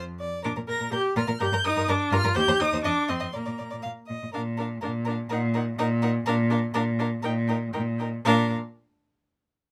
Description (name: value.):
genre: quick classical-period movement for string quartet.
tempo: 123 BPM.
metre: 2/4.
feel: uneven beats.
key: Bb major.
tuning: A4 = 439 Hz.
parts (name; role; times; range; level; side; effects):
clear violin; second line; 0.0-8.5 s; Bb4 to F5; -33 LUFS; equal; none.
rich cello; bass; 0.0-8.5 s; Eb2 to Bb2; -29 LUFS; equal; none.
rich violin; melody; 0.4-8.5 s; F5 to Bb6; -34 LUFS; equal; none.
clear viola; accompaniment; 0.4-8.5 s; Bb3 to Bb4; -31 LUFS; equal; none.
room: little or no reverb.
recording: close, detailed microphones.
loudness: -26 LUFS.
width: mono.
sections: 0.0-4.3 A section; 4.3-8.2 B section; 8.2-9.3 C section.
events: none.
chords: 0.4 Bb5; 1.4 Gm; 2.4 Cm/Eb; 2.8 F5; 3.3 N.C.; 4.3 Bb; 5.3 Ebm/Bb; 6.3 Bb; 7.2 Eb/Bb; 8.2 Bb.